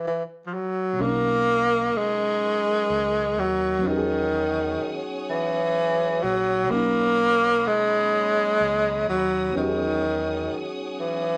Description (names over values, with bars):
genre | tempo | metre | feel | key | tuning
R&B | 42 BPM (dotted quarters) | 6/8 | straight | B major | A4 = 445 Hz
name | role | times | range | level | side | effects
breathy tenor saxophone | melody | 0.0-11.4 s | D#3 to A#3 | -24 LUFS | equal | none
FM electric piano | accompaniment | 0.9-11.4 s | B2 to A#4 | -34 LUFS | equal | none
bright studio string section | sustained chords | 1.0-11.4 s | A#4 to D#6 | -38 LUFS | equal | none
deep dub fingered electric bass | bass | 1.0-10.5 s | A#1 to E2 | -38 LUFS | equal | none
room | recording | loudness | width
moderate studio reverb, RT60 0.7 s | none | -24 LUFS | mono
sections
1.0-11.4 A section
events
stop 0.0-1.0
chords
0.0 N.C.; 1.0 Bmaj9; 3.8 Emaj13; 6.7 Bmaj9; 9.6 Emaj13